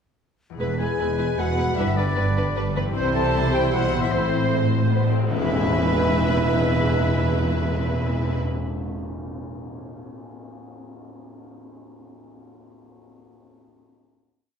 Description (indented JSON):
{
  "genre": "cinematic, heroic adventure film score",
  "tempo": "153 BPM",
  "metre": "3/4",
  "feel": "straight",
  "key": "E major",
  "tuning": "A4 = 440 Hz",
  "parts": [
    { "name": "concert harp", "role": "arpeggios", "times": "0.5-9.3 s", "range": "E2 to E5", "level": "-35 LUFS", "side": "left 6 dB", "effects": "none" },
    { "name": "warm symphonic violin section", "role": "melody", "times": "0.6-8.4 s", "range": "B4 to C5", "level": "-29 LUFS", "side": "equal", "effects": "none" },
    { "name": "bright concert flute", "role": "second line", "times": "0.6-8.4 s", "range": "B4 to A5", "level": "-33 LUFS", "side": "left 2 dB", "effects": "none" },
    { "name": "clear oboe", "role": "second line", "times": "0.6-8.4 s", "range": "B4 to A5", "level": "-34 LUFS", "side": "right 1 dB", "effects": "none" },
    { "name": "warm symphonic violin section", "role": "second line", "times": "0.6-8.4 s", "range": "B4 to A5", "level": "-35 LUFS", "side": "left 2 dB", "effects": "none" },
    { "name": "warm symphonic viola section", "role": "accompaniment", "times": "0.6-8.4 s", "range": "G3 to E4", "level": "-31 LUFS", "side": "right 1 dB", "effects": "none" },
    { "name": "mellow French horn section", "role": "sustained chords", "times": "0.6-8.4 s", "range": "B3 to A4", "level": "-30 LUFS", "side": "left 3 dB", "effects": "none" },
    { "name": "warm trombone section", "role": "sustained chords", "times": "0.6-8.4 s", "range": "D3 to A3", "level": "-32 LUFS", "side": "right 2 dB", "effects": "none" },
    { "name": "warm trumpet", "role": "stabs", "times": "0.6-8.4 s", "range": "B4 to C5", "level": "-31 LUFS", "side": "right 2 dB", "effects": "none" },
    { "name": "rich symphonic double bass section", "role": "bass", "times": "0.6-8.4 s", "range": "E1 to C2", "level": "-26 LUFS", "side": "right 1 dB", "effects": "none" },
    { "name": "warm symphonic cello section", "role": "bass", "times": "0.6-8.4 s", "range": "E2 to C3", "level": "-28 LUFS", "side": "right 1 dB", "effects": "none" },
    { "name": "cymbal swell and tam-tam", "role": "percussion", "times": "2.9-6.8 s", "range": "none", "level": "-30 LUFS", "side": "left 2 dB", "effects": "none" }
  ],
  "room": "wet scoring stage reverb, RT60 1.5 s",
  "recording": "heard from further back in the room",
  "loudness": "-20 LUFS",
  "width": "side -7 dB against mid",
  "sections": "0.6-5.3 theme; 5.3-7.7 final chord",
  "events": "band accent 5.3-5.7",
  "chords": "0.6 E; 1.8 G; 2.9 C; 4.1 Am; 5.3 E"
}